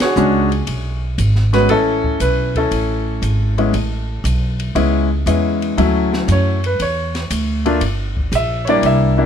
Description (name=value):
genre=jazz piano trio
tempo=118 BPM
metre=4/4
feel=swing 69% on 8ths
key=A major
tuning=A4 = 440 Hz
part: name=clear baby grand piano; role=melody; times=0.0-9.3 s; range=F#3 to E5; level=-17 LUFS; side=left 1 dB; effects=plate reverb
part: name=upright bass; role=bass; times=0.0-9.3 s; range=G1 to F#2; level=-18 LUFS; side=right 1 dB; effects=none
part: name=open jazz drum kit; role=drums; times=0.0-9.0 s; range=hi-hat, kick drum, ride cymbal, snare drum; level=-27 LUFS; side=left 2 dB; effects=none
room=light reverb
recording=close, detailed microphones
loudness=-15 LUFS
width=side -8 dB against mid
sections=0.0-5.8 A section; 5.8-9.3 B section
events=band accent 0.0; grand piano solo 5.8-9.3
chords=0.0 E13 (rootless); 1.7 Amaj9; 5.8 Dmaj9; 7.8 Gm